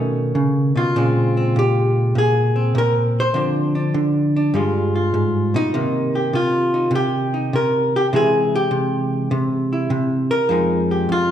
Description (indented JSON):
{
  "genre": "solo jazz",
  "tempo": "100 BPM",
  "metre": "4/4",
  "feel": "swing 68% on 8ths",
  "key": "unclear",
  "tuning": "A4 = 442 Hz",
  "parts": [
    { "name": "hollow-body jazz guitar", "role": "solo", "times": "0.0-11.3 s", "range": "F2 to C5", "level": "-16 LUFS", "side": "equal", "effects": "none" }
  ],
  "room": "wet recital hall reverb, RT60 1.4 s",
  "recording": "recorded in a church or concert hall",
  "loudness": "-16 LUFS",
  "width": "side -10 dB against mid",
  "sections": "0.0-11.3 A section",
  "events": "none",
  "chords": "0.0 B9; 0.9 Bbm9; 3.3 Dm7; 4.5 G7b9; 5.7 Cm7; 8.1 C; 10.5 Fm9",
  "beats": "0.34 | 0.94 1.54 2.14 2.74 | 3.33 3.93 4.53 5.13 | 5.73 6.33 6.92 7.52 | 8.12 8.71 9.31 9.91 | 10.50 11.10"
}